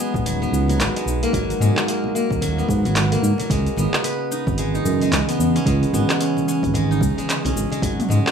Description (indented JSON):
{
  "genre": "organic downtempo",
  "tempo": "111 BPM",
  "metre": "4/4",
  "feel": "swing 60% on 16ths",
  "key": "unclear",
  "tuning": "A4 = 439 Hz",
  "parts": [
    { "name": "warbly tape-like pad", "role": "sustained chords", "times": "0.0-8.3 s", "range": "C#3 to A#4", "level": "-27 LUFS", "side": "equal", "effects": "chorus, built-in reverb, sidechain pumping, shimmer reverb" },
    { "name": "steel-string zither", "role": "arpeggios", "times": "0.0-8.3 s", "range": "F#3 to B4", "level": "-23 LUFS", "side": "left 1 dB", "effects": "tape echo, shimmer reverb" },
    { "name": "deep house drum kit", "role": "drums", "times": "0.0-8.3 s", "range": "cabasa, handclaps, hi-hat, toms", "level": "-25 LUFS", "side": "equal", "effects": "overdrive" },
    { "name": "smooth synth bass", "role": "bass", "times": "0.1-8.2 s", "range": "D#1 to G#2", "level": "-20 LUFS", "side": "right 1 dB", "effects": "none" },
    { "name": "electronic kick drum", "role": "drums", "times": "0.1-8.0 s", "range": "none", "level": "-25 LUFS", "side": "right 1 dB", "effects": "overdrive" },
    { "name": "congas and bongos", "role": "percussion", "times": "0.1-8.2 s", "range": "none", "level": "-33 LUFS", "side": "left 2 dB", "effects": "none" }
  ],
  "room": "light reverb",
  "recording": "rough home demo mix, studio reverb",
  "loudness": "-18 LUFS",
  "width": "side -7 dB against mid",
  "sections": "0.0-8.3 A section",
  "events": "none",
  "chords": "0.0 G#m9; 3.5 C#m9"
}